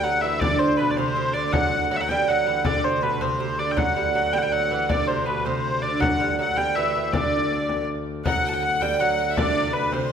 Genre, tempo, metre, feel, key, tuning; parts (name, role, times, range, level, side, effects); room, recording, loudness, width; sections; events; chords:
medieval dance; 107 BPM (dotted quarters); 6/8; straight; D mixolydian; A4 = 442 Hz
rich hurdy-gurdy; melody; 0.0-10.1 s; B4 to G5; -23 LUFS; left 2 dB
lute; second line; 0.0-10.1 s; B2 to G3; -25 LUFS; right 5 dB
pedal harmonium; drone; 0.0-10.1 s; D2; -31 LUFS; left 1 dB
frame drum; percussion; 0.4-10.1 s; -29 LUFS; left 2 dB
bright fiddle; second line; 8.3-10.1 s; B4 to A5; -31 LUFS; left 5 dB
moderate scoring stage reverb, RT60 2.0 s; -20 LUFS; side -7 dB against mid
0.0-8.3 A section; 8.3-10.1 A section